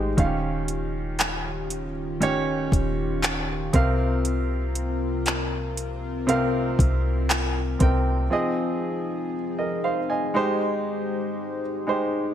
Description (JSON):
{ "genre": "contemporary R&B", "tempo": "59 BPM", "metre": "4/4", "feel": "straight", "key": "unclear", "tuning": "A4 = 436 Hz", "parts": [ { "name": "warm baby grand piano", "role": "accompaniment", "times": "0.0-12.3 s", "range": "C3 to Ab5", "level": "-26 LUFS", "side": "right 2 dB", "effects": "none" }, { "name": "chorused pulse-width pad", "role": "sustained chords", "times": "0.0-12.3 s", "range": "C3 to C5", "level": "-30 LUFS", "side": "left 3 dB", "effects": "none" }, { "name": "soft 808-style bass", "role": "bass", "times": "0.0-8.3 s", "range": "Eb1 to C2", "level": "-27 LUFS", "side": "equal", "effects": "none" }, { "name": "smooth R&B drum kit", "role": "drums", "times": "0.2-8.0 s", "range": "handclaps, hi-hat, kick drum", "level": "-24 LUFS", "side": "equal", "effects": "overdrive, gated reverb" } ], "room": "light reverb", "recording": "bright 1980s-style digital production", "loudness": "-22 LUFS", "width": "side -10 dB against mid", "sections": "0.0-12.3 A section", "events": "break 8.3-12.3", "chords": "0.2 Eb9; 3.7 C7sus4; 8.3 Fm7; 10.3 Abmaj7" }